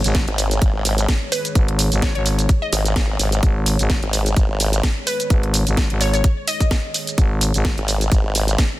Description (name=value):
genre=bass house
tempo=128 BPM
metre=4/4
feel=swing 55% on 16ths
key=G# minor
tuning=A4 = 440 Hz
part: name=dark analog pad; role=sustained chords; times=0.0-8.8 s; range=D#3 to C#5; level=-32 LUFS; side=equal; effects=chorus, sidechain pumping
part: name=growling FM bass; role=bass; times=0.0-7.8 s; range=G#1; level=-19 LUFS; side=equal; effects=tube saturation, sidechain pumping
part: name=garage drum kit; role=drums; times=0.0-8.7 s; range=hi-hat, shaker, snare drum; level=-23 LUFS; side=right 1 dB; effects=none
part: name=electronic kick drum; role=drums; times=0.1-8.7 s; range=none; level=-18 LUFS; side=equal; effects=none
part: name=formant-sweep wobble bass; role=bass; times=0.3-4.8, 7.8-8.6 s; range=G#1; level=-19 LUFS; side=equal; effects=chorus, tube saturation, sidechain pumping
part: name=glassy wavetable pluck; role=melody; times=1.3-7.1 s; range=B4 to D#5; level=-26 LUFS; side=left 1 dB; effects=chorus, digital delay
room=digital ambience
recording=dense, heavily limited modern master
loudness=-16 LUFS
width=side -17 dB against mid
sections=0.0-8.8 A section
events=none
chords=0.0 G#5